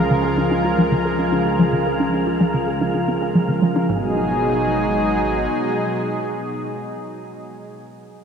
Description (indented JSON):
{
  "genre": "ambient, sequencer-driven space music",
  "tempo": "111 BPM",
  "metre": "4/4",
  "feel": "straight",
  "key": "G# dorian",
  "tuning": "A4 = 440 Hz",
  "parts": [
    { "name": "lush unison pad", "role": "sustained chords", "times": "0.0-7.5 s", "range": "B2 to A#4", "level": "-20 LUFS", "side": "equal", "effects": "chorus" },
    { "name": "warm sub bass", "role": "bass", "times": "0.0-5.5 s", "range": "G#1 to C#2", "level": "-35 LUFS", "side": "equal", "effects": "none" },
    { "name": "wind-like tuned noise texture", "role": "texture", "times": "0.0-3.9 s", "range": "G#4 to E#5", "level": "-30 LUFS", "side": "right 3 dB", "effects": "built-in reverb" },
    { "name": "hollow square pluck", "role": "riff", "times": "0.1-4.1 s", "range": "G#2 to G#4", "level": "-21 LUFS", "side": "equal", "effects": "chorus, analog delay" }
  ],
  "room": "wet cathedral reverb, RT60 5.6 s",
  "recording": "in a vast, echoing space, cassette tape",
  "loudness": "-17 LUFS",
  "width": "side -7 dB against mid",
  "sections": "0.0-3.9 A section; 3.9-8.2 B section",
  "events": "fade-out on sub bass 0.0-3.9",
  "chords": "0.0 C#; 3.9 G#m7",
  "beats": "0.11 0.65 1.19 | 1.73 2.27 2.81 3.35 | 3.89 4.43 4.97 5.51 | 6.05 6.59 7.13"
}